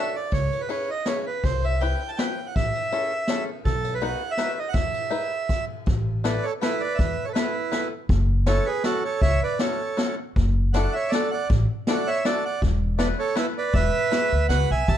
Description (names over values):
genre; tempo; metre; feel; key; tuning
musette waltz; 160 BPM; 3/4; swing 54% on 8ths, rubato; A major from 5.9 s; A4 = 440 Hz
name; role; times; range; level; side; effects
accordion; melody; 0.0-15.0 s; E4 to A5; -26 LUFS; right 4 dB; plate reverb
bluegrass banjo; accompaniment; 0.0-14.7 s; B3 to C#5; -30 LUFS; left 6 dB; none
upright bass; bass; 0.3-15.0 s; E1 to E2; -23 LUFS; equal; none
jazz brush drum kit; drums; 0.3-15.0 s; crash cymbal, hi-hat, kick drum, ride cymbal, snare drum; -27 LUFS; left 1 dB; none
room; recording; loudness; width
moderate studio reverb, RT60 0.6 s; dark, warm production; -22 LUFS; side -10 dB against mid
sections
0.0-5.9 A section; 5.9-15.0 B section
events
none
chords
0.3 C#m7; 1.4 Cmaj7; 2.6 Amaj7; 3.7 B; 4.7 Emaj7; 5.9 Asus2; 8.1 F#m7; 10.4 Dadd9/F#; 12.6 Esus4; 13.7 Eadd9